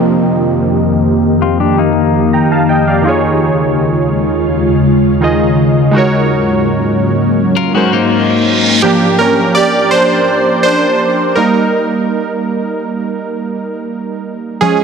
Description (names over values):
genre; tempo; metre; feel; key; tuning
R&B; 83 BPM; 4/4; straight; C phrygian; A4 = 440 Hz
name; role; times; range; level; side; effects
warm analog keys; accompaniment; 0.0-14.8 s; Eb3 to Bb5; -13 LUFS; right 2 dB; chorus, low-pass filter
ethereal airy pad; sustained chords; 0.0-8.8 s; Eb2 to G4; -13 LUFS; left 1 dB; ensemble chorus, built-in reverb, low-pass filter
downlifter and reverse cymbal; sound effects; 0.0-3.0, 8.0-8.8 s; none; -20 LUFS; right 2 dB; none
clean electric guitar; arpeggios; 1.4-2.8, 7.6-8.8 s; Bb3 to Bb4; -15 LUFS; left 9 dB; harmonic tremolo, low-pass filter, ping-pong delay
room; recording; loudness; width
light reverb; dense, heavily limited modern master; -10 LUFS; side -6 dB against mid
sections
0.0-8.8 A section; 8.8-14.8 B section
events
filter sweep 0.0-8.8; reverse cymbal 8.0-8.8; synth keys solo 8.8-14.8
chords
0.0 F9sus4; 3.0 Eb9sus4; 5.9 Ab9sus4; 8.8 C9sus4; 11.4 Gm